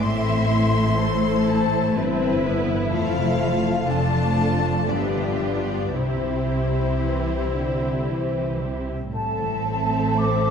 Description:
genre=classical, slow romantic movement for symphony orchestra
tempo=56-63 BPM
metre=3/4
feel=rubato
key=C major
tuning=A4 = 440 Hz
part: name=warm symphonic violin section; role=melody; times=0.0-10.5 s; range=C5 to C6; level=-29 LUFS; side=left 4 dB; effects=none
part: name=warm symphonic violin section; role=second line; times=0.0-10.5 s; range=E4 to E5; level=-28 LUFS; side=left 3 dB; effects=none
part: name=warm symphonic viola section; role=accompaniment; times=0.0-10.5 s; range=A3 to F4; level=-27 LUFS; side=equal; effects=none
part: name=concert harp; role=arpeggios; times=0.0-10.5 s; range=F2 to E5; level=-27 LUFS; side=left 6 dB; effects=none
part: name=warm symphonic cello section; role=bass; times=0.0-10.5 s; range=F2 to E3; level=-27 LUFS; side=right 3 dB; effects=none
part: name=warm symphonic double bass section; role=bass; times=0.0-10.5 s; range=F1 to C2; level=-28 LUFS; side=right 3 dB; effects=none
part: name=flute section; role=second line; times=9.1-10.5 s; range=A5 to D6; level=-25 LUFS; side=right 3 dB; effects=none
room=wet concert hall reverb, RT60 2.2 s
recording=dark, warm production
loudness=-20 LUFS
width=side -7 dB against mid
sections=0.0-9.2 A section; 9.2-10.5 B section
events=none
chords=0.0 Am; 2.9 F; 3.9 Dm/F; 4.9 G7; 6.0 C; 9.2 Am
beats=| 0.03 0.99 1.95 | 2.92 3.88 4.89 | 5.96 7.03 8.09 | 9.15 10.21

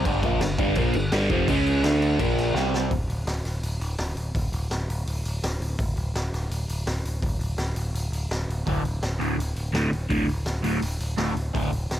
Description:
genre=garage rock duo or trio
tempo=167 BPM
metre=4/4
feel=straight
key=unclear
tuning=A4 = 441 Hz
part: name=crunchy overdriven guitar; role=riff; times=0.0-2.9, 8.7-11.7 s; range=D2 to D4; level=-24 LUFS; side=equal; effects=phaser
part: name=growling picked electric bass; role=bass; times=0.1-12.0 s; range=D1 to D2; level=-28 LUFS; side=equal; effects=overdrive
part: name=raw garage drum kit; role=drums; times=0.1-12.0 s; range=crash cymbal, hi-hat, kick drum, snare drum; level=-29 LUFS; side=equal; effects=none
room=small room ambience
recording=none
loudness=-23 LUFS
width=side -12 dB against mid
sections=0.0-2.9 A section; 2.9-12.0 B section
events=drum fill 2.5-2.9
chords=0.0 G5; 1.5 C#5; 1.8 D5; 2.2 Bb5; 2.5 C5; 2.9 D5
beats=| 0.04 0.40 0.76 1.11 | 1.47 1.83 2.19 2.55 | 2.90 3.26 3.62 3.98 | 4.34 4.70 5.06 5.42 | 5.78 6.14 6.50 6.86 | 7.22 7.58 7.94 8.30 | 8.66 9.02 9.38 9.74 | 10.10 10.46 10.82 11.18 | 11.54 11.90

